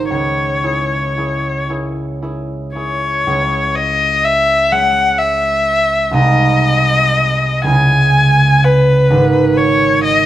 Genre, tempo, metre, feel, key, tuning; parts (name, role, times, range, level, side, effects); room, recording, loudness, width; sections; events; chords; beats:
classical, romantic duo for violin and harp; 37-43 BPM (dotted quarters); 6/8; rubato; C# minor; A4 = 440 Hz
rich violin; melody; 0.0-10.3 s; B4 to G#5; -14 LUFS; left 2 dB
concert harp; accompaniment; 0.0-10.3 s; G#1 to C#5; -15 LUFS; right 2 dB
light reverb; close, detailed microphones; -11 LUFS; side -13 dB against mid
0.0-3.3 A section; 3.3-10.3 B section
0.1 C#m; 6.1 G#/B#; 7.6 C#m; 9.1 G#m
| 0.08 1.69 | 3.26 4.71 | 6.13 7.65 | 9.09